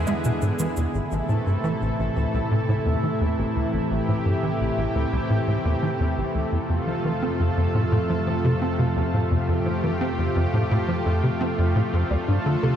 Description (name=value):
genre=ambient, sequencer-driven space music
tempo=86 BPM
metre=4/4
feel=straight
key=unclear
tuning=A4 = 439 Hz
part: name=lush unison pad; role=sustained chords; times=0.0-12.8 s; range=C3 to A4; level=-25 LUFS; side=equal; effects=chorus, shimmer reverb
part: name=tight sequencer bass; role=riff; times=0.0-12.7 s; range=A1 to C4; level=-24 LUFS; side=equal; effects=ensemble chorus, ping-pong delay
part: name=analog drone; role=bass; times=0.0-12.8 s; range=D2 to A2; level=-31 LUFS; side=equal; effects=chorus
part: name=cabasa and woodblock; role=percussion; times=0.1-0.9 s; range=none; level=-40 LUFS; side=right 4 dB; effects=overdrive, ping-pong delay
part: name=soft round pluck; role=arpeggios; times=12.1-12.8 s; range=D4 to D5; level=-31 LUFS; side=left 1 dB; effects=chorus, auto-pan, shimmer reverb
room=wet concert hall reverb, RT60 2.3 s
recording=none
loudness=-21 LUFS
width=side -9 dB against mid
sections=0.9-12.8 A section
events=none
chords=0.0 E7; 0.9 Am; 6.5 F; 12.1 Dm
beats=0.25 | 0.94 1.64 2.34 3.04 | 3.73 4.43 5.13 5.83 | 6.53 7.22 7.92 8.62 | 9.32 10.01 10.71 11.41 | 12.11